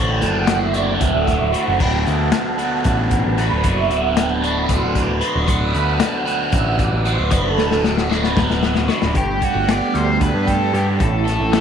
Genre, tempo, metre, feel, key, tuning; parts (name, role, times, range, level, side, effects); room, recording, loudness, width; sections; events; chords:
psychedelic rock; 228 BPM (eighths); 7/8; straight; A4 = 440 Hz
overdriven electric guitar; riff; 0.0-11.6 s; D2 to B4; -20 LUFS; right 1 dB; phaser
growling picked electric bass; bass; 0.0-11.6 s; D1 to G2; -21 LUFS; equal; overdrive
hand-pumped harmonium; drone; 0.0-9.2 s; D2 to D3; -30 LUFS; left 1 dB
ensemble organ-string; sustained chords; 0.1-11.6 s; E3 to D6; -24 LUFS; right 8 dB; phaser, ensemble chorus
crunchy breakbeat drum kit; drums; 0.2-11.6 s; crash cymbal, hi-hat, kick drum, snare drum; -21 LUFS; left 3 dB
octave-fuzz lead guitar; melody; 9.2-11.6 s; F#4 to D5; -23 LUFS; left 2 dB; distortion, slapback echo
moderate echo chamber reverb, RT60 1.8 s, small room reverb; 1960s-style stereo; -16 LUFS; side -8 dB against mid
0.0-9.2 A section; 9.2-11.6 B section
drum fill 7.6-9.2
0.0 D7; 1.8 Bm7/D; 9.2 Gadd9; 11.0 Asus2